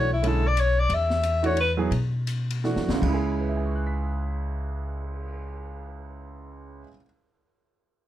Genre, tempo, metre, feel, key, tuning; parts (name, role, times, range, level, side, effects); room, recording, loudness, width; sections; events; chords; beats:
modal jazz; 153-180 BPM; 3/4; swing 62% on 8ths; C# phrygian; A4 = 440 Hz
breathy alto saxophone; melody; 0.0-1.7 s; E4 to E5; -24 LUFS; left 3 dB; plate reverb
clear concert grand piano; accompaniment; 0.0-7.1 s; C#2 to B6; -30 LUFS; right 4 dB
upright bass; bass; 0.0-6.8 s; B1 to B2; -27 LUFS; equal
open jazz drum kit; drums; 0.2-5.3 s; crash cymbal, cymbal swell, hi-hat, kick drum, ride cymbal, snare drum; -35 LUFS; left 3 dB
little or no reverb; close, detailed microphones; -23 LUFS; side -12 dB against mid
0.0-3.0 A section; 3.0-5.4 B section
alto saxophone solo 0.0-3.0; slowing down 0.9-3.0; drum fill 2.6-3.0
0.0 E9sus4; 3.0 C#m
0.23 0.57 | 0.90 1.23 1.57 | 1.92 2.27 2.64 | 3.02 3.41 3.80 | 4.20 4.59 4.98